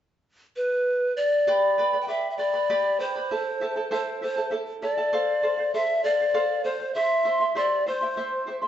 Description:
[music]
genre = andean folk, Andean ensemble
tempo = 66 BPM (dotted quarters)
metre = 6/8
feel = straight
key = unclear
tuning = A4 = 442 Hz
[part]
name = reedy pan flute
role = melody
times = 0.6-8.6 s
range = B4 to G5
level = -23 LUFS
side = left 1 dB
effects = none
[part]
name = charango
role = accompaniment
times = 1.5-8.7 s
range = E4 to C6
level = -28 LUFS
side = right 2 dB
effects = none
[sound]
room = wet large studio reverb, RT60 1.2 s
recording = band playing live in one room, nothing above 7.8 kHz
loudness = -22 LUFS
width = side -10 dB against mid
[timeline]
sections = 0.0-1.5 A section; 1.5-8.7 B section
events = none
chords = 0.0 N.C.; 1.5 G; 3.3 Am; 5.1 F; 7.0 C

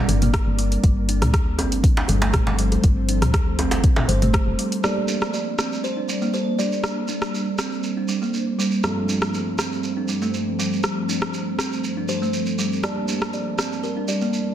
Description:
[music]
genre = afro house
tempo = 120 BPM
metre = 4/4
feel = straight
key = G minor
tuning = A4 = 440 Hz
[part]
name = ethereal airy pad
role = sustained chords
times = 0.0-14.5 s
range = G2 to A5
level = -28 LUFS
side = equal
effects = ensemble chorus, built-in reverb, sidechain pumping
[part]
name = kalimba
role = arpeggios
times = 0.0-14.3 s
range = G3 to D4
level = -26 LUFS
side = right 1 dB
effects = sidechain pumping, low-pass filter, dub echo
[part]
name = woody FM bass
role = bass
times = 0.1-4.5 s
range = F1 to D2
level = -22 LUFS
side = equal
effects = sidechain pumping
[part]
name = deep house drum kit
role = drums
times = 0.1-13.7 s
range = hi-hat, rim click, toms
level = -26 LUFS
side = equal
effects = soft clipping on snare
[part]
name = electronic kick drum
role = drums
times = 0.3-4.4 s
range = none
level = -19 LUFS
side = equal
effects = none
[part]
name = djembe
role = percussion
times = 0.3-4.4 s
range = none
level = -26 LUFS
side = right 1 dB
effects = none
[part]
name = kalimba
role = melody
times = 4.1-7.1, 12.1-14.5 s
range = Bb4 to D5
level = -30 LUFS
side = equal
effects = dub echo
[part]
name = felt-muted upright piano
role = stabs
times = 4.8-14.5 s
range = G2 to A5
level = -31 LUFS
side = right 2 dB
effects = sidechain pumping, low-pass filter, dub echo
[part]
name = shekere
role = percussion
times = 4.8-14.4 s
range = none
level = -32 LUFS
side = right 4 dB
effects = none
[sound]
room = light reverb, studio reverb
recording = dense, heavily limited modern master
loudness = -19 LUFS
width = side -11 dB against mid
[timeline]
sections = 0.0-4.8 A section; 4.8-14.5 B section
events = filter sweep on felt piano 4.8-14.5; filter sweep on ambient pad 4.8-14.5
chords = 0.0 Gm; 0.8 F/G; 4.8 Gmadd9; 8.8 F/G; 12.8 Gmadd9

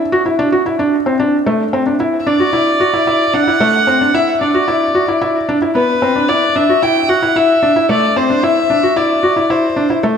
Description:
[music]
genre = electronica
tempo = 112 BPM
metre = 4/4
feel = straight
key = A dorian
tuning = A4 = 440 Hz
[part]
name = felt-muted upright piano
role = riff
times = 0.1-10.2 s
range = A3 to F#4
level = -14 LUFS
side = equal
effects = ping-pong delay
[part]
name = dark violin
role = melody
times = 2.2-9.9 s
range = B4 to G5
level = -14 LUFS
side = left 1 dB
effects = ping-pong delay
[sound]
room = wet plate reverb, RT60 2.6 s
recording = dreamy mix soaked in reverb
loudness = -11 LUFS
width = side -7 dB against mid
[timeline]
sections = 0.0-1.5 A section; 1.5-10.2 B section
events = break 0.0-1.5; build-up 0.0-1.5; drop 1.5-10.2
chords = 0.0 Cadd9 (rootless); 1.5 Asus4 (rootless); 5.7 E5; 7.9 Amadd11

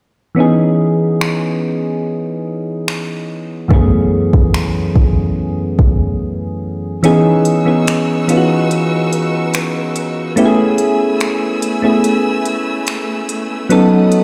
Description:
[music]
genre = contemporary R&B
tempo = 72 BPM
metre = 4/4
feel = straight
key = C# minor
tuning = A4 = 440 Hz
[part]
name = soft electric-piano-like synth keys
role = accompaniment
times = 0.3-14.2 s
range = F#2 to A4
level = -16 LUFS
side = equal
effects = chorus
[part]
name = smooth R&B drum kit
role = drums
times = 1.2-14.2 s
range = finger snaps, hi-hat, kick drum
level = -18 LUFS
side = equal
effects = none
[part]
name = clear studio string section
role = sustained chords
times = 7.0-14.2 s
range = A3 to E6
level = -25 LUFS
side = equal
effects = none
[sound]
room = light reverb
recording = played on a big sound system in a bare room, large studio reverb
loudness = -15 LUFS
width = mono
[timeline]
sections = 0.4-7.0 A section; 7.0-14.2 B section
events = break 6.2-7.0; kick muted 7.0-14.2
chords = 0.4 C#m9; 3.7 F#m11; 7.0 C#m9; 10.4 Amaj9; 13.7 B7

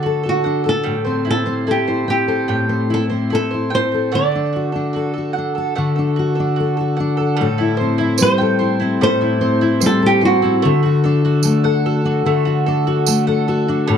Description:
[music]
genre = acoustic pop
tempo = 74 BPM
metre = 4/4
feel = straight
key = A dorian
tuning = A4 = 440 Hz
[part]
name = flamenco guitar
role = melody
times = 0.0-12.6 s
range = F#4 to D5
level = -19 LUFS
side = right 3 dB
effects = plate reverb
[part]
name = fingerpicked steel-string acoustic guitar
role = accompaniment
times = 0.0-14.0 s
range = A2 to A4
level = -17 LUFS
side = left 3 dB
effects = none
[part]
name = mandolin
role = arpeggios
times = 0.0-14.0 s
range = G3 to G5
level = -24 LUFS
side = right 8 dB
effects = plate reverb, tape echo
[part]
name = tambourine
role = percussion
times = 8.2-13.3 s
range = none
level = -21 LUFS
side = right 12 dB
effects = none
[sound]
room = moderate studio ambience, RT60 0.5 s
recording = dark, warm production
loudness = -15 LUFS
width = side -8 dB against mid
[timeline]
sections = 0.0-7.4 A section; 7.4-14.0 B section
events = none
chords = 0.0 D; 0.9 Am7; 4.1 D; 7.4 Am7; 10.6 D

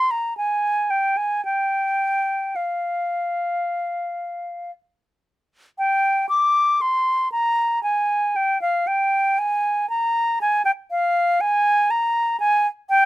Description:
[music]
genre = classical, baroque-style fantasia for unaccompanied flute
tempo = 54-61 BPM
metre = 4/4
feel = rubato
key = unclear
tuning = A4 = 439 Hz
[part]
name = concert flute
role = solo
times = 0.0-13.1 s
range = F5 to D6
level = -18 LUFS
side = equal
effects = none
[sound]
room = little or no reverb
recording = close, detailed microphones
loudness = -19 LUFS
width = side -16 dB against mid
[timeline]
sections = 0.0-5.8 A section; 5.8-13.1 B section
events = none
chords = none

